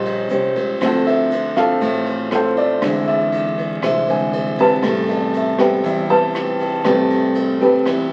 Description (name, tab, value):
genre	bossa nova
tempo	119 BPM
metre	4/4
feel	straight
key	A minor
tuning	A4 = 440 Hz
part	nylon-string guitar	accompaniment	0.0-8.1 s	A2 to B#4	-20 LUFS	equal	none
part	warm baby grand piano	accompaniment	0.0-8.1 s	C3 to A5	-22 LUFS	equal	none
part	upright bass	bass	0.0-8.1 s	A1 to E2	-34 LUFS	equal	none
part	egg shaker	percussion	0.0-8.1 s	none	-58 LUFS	equal	none
part	jazz brush drum kit	drums	0.1-8.0 s	kick drum, ride cymbal, rim click	-29 LUFS	equal	none
room	moderate large studio reverb, RT60 1.2 s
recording	very old 78 rpm record, vinyl crackle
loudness	-18 LUFS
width	mono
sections	0.0-8.1 A section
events	grand piano solo 0.0-8.1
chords	0.0 D#13; 0.8 Dm7; 2.8 E7b13; 4.8 Am9